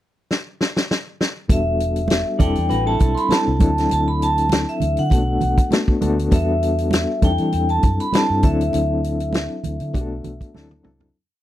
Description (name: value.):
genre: lush 1970s-style soul.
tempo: 100 BPM.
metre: 4/4.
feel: swing 54% on 16ths.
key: E minor.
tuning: A4 = 441 Hz.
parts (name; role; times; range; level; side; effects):
vintage drum kit; drums; 0.3-11.1 s; hi-hat, kick drum, snare drum, toms; -19 LUFS; equal; none.
vibraphone with medium hard mallets; melody; 1.5-10.5 s; E5 to C6; -23 LUFS; equal; none.
reed electric piano; accompaniment; 1.5-11.2 s; F3 to A4; -23 LUFS; left 2 dB; fast tremolo.
vintage muted fingered electric bass; bass; 1.5-11.1 s; E1 to E3; -22 LUFS; equal; none.
congas; percussion; 1.5-11.0 s; none; -28 LUFS; right 5 dB; none.
electric guitar through a small old amp; riff; 2.4-3.6 s; E4 to D5; -27 LUFS; right 4 dB; none.
room: little or no reverb.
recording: dry, close 1970s-style studio recording.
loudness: -17 LUFS.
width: side -13 dB against mid.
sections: 0.0-1.5 pickup bar; 1.5-11.1 verse.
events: drum fill 0.3-1.5, 10.5-11.1; fade-out 8.7-11.1.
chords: 0.0 N.C.; 1.5 Em11; 2.4 C69/E; 3.6 D9; 5.1 Bm7; 6.3 Em11; 7.2 C69/E; 8.4 D9; 9.9 Bm7; 10.5 D9.